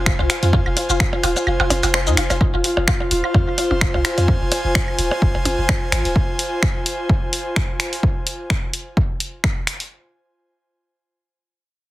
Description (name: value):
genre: minimal techno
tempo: 128 BPM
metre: 4/4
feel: swing 55% on 16ths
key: F minor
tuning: A4 = 440 Hz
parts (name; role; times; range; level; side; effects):
- punchy sub bass; bass; 0.0-6.1 s; Eb1 to F2; -21 LUFS; equal; sidechain pumping
- airy breathy pad; texture; 0.0-8.0 s; F4 to Ab5; -24 LUFS; equal; chorus, sidechain pumping
- mallet-like synth pluck; riff; 0.1-4.3 s; Eb4 to C5; -25 LUFS; left 1 dB; ensemble chorus, sidechain pumping, dub echo
- electronic kick drum; drums; 0.1-9.5 s; none; -19 LUFS; equal; none
- punchy analog drum machine; drums; 0.1-9.9 s; finger snaps, hi-hat, shaker; -21 LUFS; equal; none
- percussion blips and claves; percussion; 0.2-6.0 s; none; -24 LUFS; right 2 dB; digital delay
room: moderate studio ambience, RT60 0.5 s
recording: heavily compressed radio sound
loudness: -17 LUFS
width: side -16 dB against mid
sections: 0.0-2.4 A section; 2.4-9.9 B section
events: drop 0.0-2.4; kick drops out 1.5-2.4; filter sweep on synth arpeggio sound 2.4-4.3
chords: 0.0 Fm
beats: 0.06 | 0.53 1.00 1.47 1.94 | 2.41 2.88 3.35 3.81 | 4.28 4.75 5.22 5.69 | 6.16 6.63 7.09 7.56 | 8.03 8.50 8.97 9.44